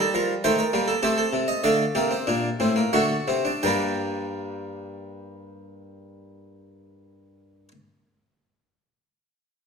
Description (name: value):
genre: classical, baroque-style 4-part fugue for harpsichord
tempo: 83-105 BPM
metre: 3/4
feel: straight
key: G minor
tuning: A4 = 441 Hz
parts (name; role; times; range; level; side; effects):
- harpsichord; solo; 0.0-7.7 s; G2 to Bb5; -22 LUFS; equal; none
room: wet recital hall reverb, RT60 1.4 s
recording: minimal, uncompressed stereo recording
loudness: -21 LUFS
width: side -5 dB against mid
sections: 0.0-3.6 A section; 3.6-7.9 B section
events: slowing down 0.0-3.6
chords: 0.0 Eb; 1.0 Am7b5; 1.6 D7sus4; 2.9 D7; 3.6 Gm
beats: 0.44 1.03 | 1.64 2.27 2.93 | 3.63 4.35 5.07 | 5.79 6.51 7.23